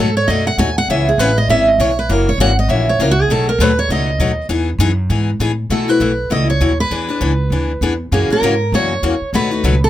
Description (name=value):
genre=acoustic string swing (jazz manouche)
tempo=199 BPM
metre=4/4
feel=swing 60% on 8ths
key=unclear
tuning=A4 = 441 Hz
part: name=picked steel-string acoustic guitar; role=melody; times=0.0-9.9 s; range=F#4 to G#5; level=-16 LUFS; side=right 2 dB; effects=none
part: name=picked steel-string acoustic guitar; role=accompaniment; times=0.0-9.7 s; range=B2 to G#4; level=-18 LUFS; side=left 5 dB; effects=none
part: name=upright bass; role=bass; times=0.0-9.9 s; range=F#1 to B2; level=-18 LUFS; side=right 1 dB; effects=none
room=light reverb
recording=close, detailed microphones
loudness=-13 LUFS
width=side -13 dB against mid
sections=0.0-5.7 A section; 5.7-9.9 B section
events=steel-string acoustic guitar solo 0.0-5.7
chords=0.0 B7; 0.9 C#m7; 2.1 F#7; 3.3 B9; 4.5 Emaj7; 5.7 B7sus4; 6.9 E7; 8.1 F#7; 9.3 B7